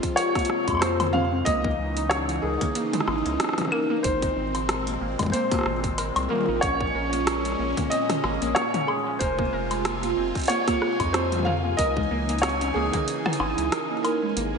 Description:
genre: IDM.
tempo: 93 BPM.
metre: 4/4.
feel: swing 56% on 16ths.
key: unclear.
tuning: A4 = 440 Hz.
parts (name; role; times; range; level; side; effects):
felt-muted upright piano; melody; 0.0-14.6 s; Ab4 to F5; -27 LUFS; equal; slapback echo, digital delay.
phased analog pad; sustained chords; 0.0-14.6 s; Bb2 to Ab4; -29 LUFS; equal; phaser, chorus.
warbly dusty pluck; arpeggios; 0.0-14.6 s; Fb3 to Bb4; -31 LUFS; right 1 dB; chorus, phaser, slapback echo, ping-pong delay.
electro analog drum machine; drums; 0.0-14.5 s; hi-hat, rim click, toms, woodblock; -28 LUFS; left 1 dB; slapback echo.
electronic kick drum; drums; 0.0-13.0 s; none; -29 LUFS; equal; none.
round analog bass; bass; 0.7-14.6 s; F1 to F2; -31 LUFS; equal; none.
bubbling stepped-filter texture; texture; 6.6-14.6 s; Ab5; -37 LUFS; right 4 dB; chorus, built-in reverb.
room: wet lush hall reverb, RT60 1.7 s.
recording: big arena sound, nothing above 10.7 kHz.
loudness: -22 LUFS.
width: side -5 dB against mid.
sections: 0.0-14.6 A section.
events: kick drops out 14.4.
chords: 0.0 Fm; 1.5 Dbmadd9; 4.0 Abadd9; 6.6 Bbm7; 9.2 Fm; 11.8 Dbmadd9.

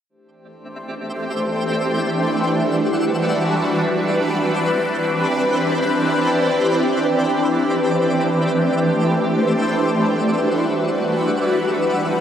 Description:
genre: hip hop.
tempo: free time.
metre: none.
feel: none.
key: unclear.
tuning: A4 = 440 Hz.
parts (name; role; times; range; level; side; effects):
shimmering ambient pad; sustained chords; 0.7-12.2 s; D3 to C5; -17 LUFS; equal; chorus, built-in reverb, phaser.
twinkling granular texture; texture; 0.7-12.2 s; G3 to E5; -26 LUFS; equal; built-in reverb.
room: wet huge ambient reverb, RT60 7.7 s.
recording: none.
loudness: -16 LUFS.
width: side -9 dB against mid.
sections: 0.1-12.2 A section.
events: none.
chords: 0.1 D9sus4; 2.0 Em9; 3.9 Cmaj9; 7.7 D9sus4; 9.6 Em9; 11.5 Cmaj9.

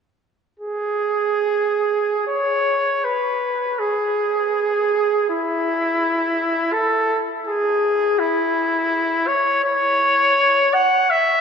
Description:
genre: classical, free, expressive piece for unaccompanied trumpet.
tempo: free time.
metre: none.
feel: none.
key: E major.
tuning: A4 = 440 Hz.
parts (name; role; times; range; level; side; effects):
clear trumpet; solo; 0.6-11.4 s; E4 to F#5; -17 LUFS; equal; none.
room: wet cathedral reverb, RT60 5.2 s.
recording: minimal, uncompressed stereo recording, lossy compression artefacts.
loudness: -17 LUFS.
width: side -6 dB against mid.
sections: 0.6-11.4 A section.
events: none.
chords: none.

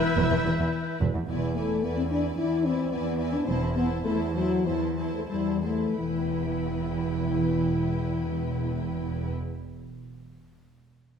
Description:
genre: quick classical-period movement for symphony orchestra.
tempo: 85-111 BPM.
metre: 4/4.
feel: rubato.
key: E minor.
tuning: A4 = 438 Hz.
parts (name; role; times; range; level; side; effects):
rich chamber violin section; melody; 0.0-9.3 s; E5 to A5; -41 LUFS; left 4 dB; none.
dark cor anglais; second line; 0.0-1.0 s; E4; -36 LUFS; right 3 dB; none.
mellow clarinet; second line; 0.0-1.0 s; none; barely audible; none; none.
mellow hollow concert flute; second line; 0.0-1.0 s; G6; -34 LUFS; left 4 dB; none.
rich chamber violin section; second line; 0.0-9.3 s; E4 to D5; -40 LUFS; left 3 dB; none.
mellow bassoon; accompaniment; 0.0-1.0 s; E3; -36 LUFS; right 2 dB; none.
rich studio viola section; accompaniment; 0.0-9.3 s; E4 to B4; -36 LUFS; right 4 dB; none.
dark French horn section; sustained chords; 0.0-9.3 s; E3 to E4; -28 LUFS; left 3 dB; none.
clear trumpet; stabs; 0.0-1.0 s; E4; -36 LUFS; right 1 dB; none.
warm chamber double bass section; bass; 0.2-9.3 s; E1; -32 LUFS; right 4 dB; none.
warm studio cello section; bass; 0.2-9.3 s; E2; -32 LUFS; right 2 dB; none.
room: wet scoring stage reverb, RT60 1.5 s.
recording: none.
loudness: -25 LUFS.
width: side -7 dB against mid.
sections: 0.0-1.3 A section; 1.3-6.0 B section; 6.0-11.2 C section.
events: slowing down 0.2-6.0.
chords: 0.0 Em; 1.3 E7; 3.5 Am/E; 6.0 Em.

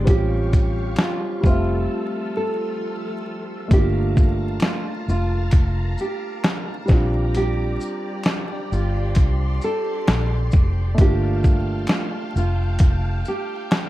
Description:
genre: lo-fi hip hop.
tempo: 66 BPM.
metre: 4/4.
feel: swing 61% on 16ths.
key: unclear.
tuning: A4 = 440 Hz.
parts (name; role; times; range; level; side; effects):
nylon-string guitar; melody; 0.0-13.9 s; E#4 to A4; -28 LUFS; right 1 dB; low-pass filter.
dark upright piano; accompaniment; 0.0-13.9 s; G3 to E5; -28 LUFS; equal; cassette tape, low-pass filter.
string machine, full ensemble; sustained chords; 0.0-13.9 s; F4 to E6; -33 LUFS; equal; ensemble chorus, low-pass filter.
vintage muted fingered electric bass; bass; 0.0-13.2 s; F1 to C2; -22 LUFS; equal; none.
dusty soul sampler-style drum kit; drums; 0.1-13.9 s; hi-hat, kick drum, shaker, snare drum; -18 LUFS; equal; none.
finger snaps; percussion; 1.0-13.9 s; none; -39 LUFS; left 2 dB; none.
room: light reverb.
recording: dark, warm production, vinyl crackle.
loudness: -18 LUFS.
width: side -16 dB against mid.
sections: 0.0-3.7 A section; 3.7-13.9 B section.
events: break 1.9-3.7.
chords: 0.1 A7alt; 1.4 Fmaj7; 3.7 Gm9; 6.9 Bb6; 11.0 Gm9.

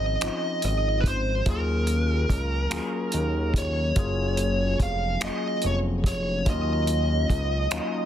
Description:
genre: slow six-eight R&B.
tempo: 48 BPM (dotted quarters).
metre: 6/8.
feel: straight.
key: Eb dorian.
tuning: A4 = 440 Hz.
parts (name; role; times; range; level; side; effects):
smooth overdriven lead guitar; melody; 0.0-8.1 s; Bb4 to F5; -28 LUFS; right 1 dB; none.
barky tine electric piano; accompaniment; 0.0-8.1 s; F3 to Ab4; -30 LUFS; left 4 dB; phaser.
fat analog bass; bass; 0.0-7.8 s; F1 to Eb2; -26 LUFS; equal; none.
cloth-damped thuddy drum kit; drums; 0.2-7.9 s; finger snaps, hi-hat, kick drum; -27 LUFS; equal; soft clipping on snare.
room: little or no reverb.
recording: dense, heavily limited modern master.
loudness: -23 LUFS.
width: side -10 dB against mid.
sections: 0.0-8.1 A section.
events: tine electric piano fill 7.7-8.1.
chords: 0.0 Dbmaj9; 1.5 Ebm11; 4.0 Gbmaj9; 6.5 Ebm9.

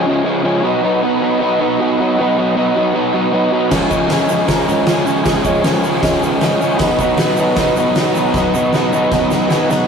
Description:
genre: garage rock duo or trio.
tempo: 156 BPM.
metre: 4/4.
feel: straight.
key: unclear.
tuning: A4 = 440 Hz.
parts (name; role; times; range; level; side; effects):
combo organ; sustained chords; 0.0-9.9 s; E#4 to G#5; -24 LUFS; right 1 dB; none.
crunchy overdriven guitar; riff; 0.0-9.9 s; B2 to D#4; -14 LUFS; equal; none.
oversized low-tuned drum kit; drums; 3.7-9.8 s; crash cymbal, hi-hat, kick drum, snare drum; -19 LUFS; equal; none.
tube shaker; percussion; 3.7-9.8 s; none; -37 LUFS; right 6 dB; none.
room: moderate studio reverb, RT60 0.7 s.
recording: rough rehearsal-room recording.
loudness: -13 LUFS.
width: side -6 dB against mid.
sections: 0.0-9.9 A section.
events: drum fill 8.3-9.9; transistor combo organ fill 9.3-9.9.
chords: 0.0 C#; 0.6 B; 3.7 C#; 6.8 B.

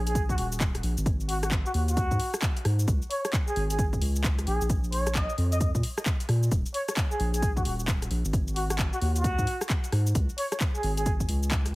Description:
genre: UK garage, two-step garage.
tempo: 132 BPM.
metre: 4/4.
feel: swing 63% on 16ths.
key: Eb minor.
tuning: A4 = 440 Hz.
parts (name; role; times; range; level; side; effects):
soft dub sub bass; bass; 0.0-11.7 s; Eb1 to Bb2; -27 LUFS; equal; sidechain pumping.
trumpet with plunger mute; melody; 0.1-11.1 s; Gb4 to Eb5; -32 LUFS; equal; digital delay.
house drum kit; drums; 0.1-11.7 s; cabasa, handclaps, hi-hat, rim click; -33 LUFS; left 1 dB; overdrive, small room ambience.
electronic kick drum; drums; 0.2-11.6 s; none; -27 LUFS; equal; overdrive, small room ambience.
room: digital ambience.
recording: heavily compressed radio sound.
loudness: -24 LUFS.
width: side -21 dB against mid.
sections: 0.0-11.8 A section.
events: none.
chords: 0.0 Eb5; 1.1 Ab5; 2.9 Db5; 4.5 Bb5; 6.5 Eb5; 8.3 Ab5; 10.2 Db5.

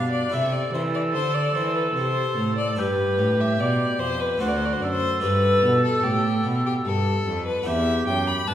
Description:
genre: classical, baroque-style sonata movement with continuo.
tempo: 74 BPM.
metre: 3/4.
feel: straight.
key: unclear.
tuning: A4 = 440 Hz.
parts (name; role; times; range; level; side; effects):
rich violin; melody; 0.0-8.5 s; G4 to B5; -25 LUFS; left 3 dB; none.
warm oboe; second line; 0.0-8.5 s; D4 to B4; -27 LUFS; right 3 dB; none.
harpsichord; accompaniment; 0.0-8.5 s; D2 to B4; -30 LUFS; equal; none.
rich cello; bass; 0.0-8.5 s; D2 to E3; -25 LUFS; right 1 dB; none.
room: wet recital hall reverb, RT60 1.4 s.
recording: heard from further back in the room.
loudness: -20 LUFS.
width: side -11 dB against mid.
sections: 0.0-8.5 A section.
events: none.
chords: 0.3 C; 2.8 G; 4.4 D7; 5.2 G; 7.7 Em.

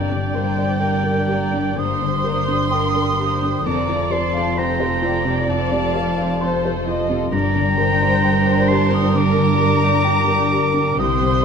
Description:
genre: cinematic, emotional film score for orchestra.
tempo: 65 BPM.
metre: 4/4.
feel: rubato.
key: G minor.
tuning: A4 = 436 Hz.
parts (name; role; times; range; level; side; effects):
muted studio violin section; melody; 0.0-11.4 s; D5 to C6; -28 LUFS; left 3 dB; none.
muted studio violin section; second line; 0.0-11.4 s; Bb3 to C5; -28 LUFS; left 3 dB; none.
warm oboe; second line; 0.0-11.4 s; G5 to Eb6; -22 LUFS; right 3 dB; none.
felt-muted upright piano; accompaniment; 0.0-11.4 s; C2 to C6; -24 LUFS; left 1 dB; none.
muted studio viola section; accompaniment; 0.0-11.4 s; G4 to Eb5; -26 LUFS; right 1 dB; none.
concert harp; arpeggios; 0.0-11.4 s; F2 to F5; -25 LUFS; left 11 dB; none.
muted studio cello section; bass; 0.0-11.4 s; F2 to C3; -25 LUFS; right 4 dB; none.
muted studio double bass section; bass; 0.0-11.4 s; F1 to C2; -25 LUFS; right 5 dB; none.
room: light reverb.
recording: close, detailed microphones.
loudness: -16 LUFS.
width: side -6 dB against mid.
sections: 0.0-11.4 A section.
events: none.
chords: 0.0 Gm; 3.7 F; 7.3 Gm.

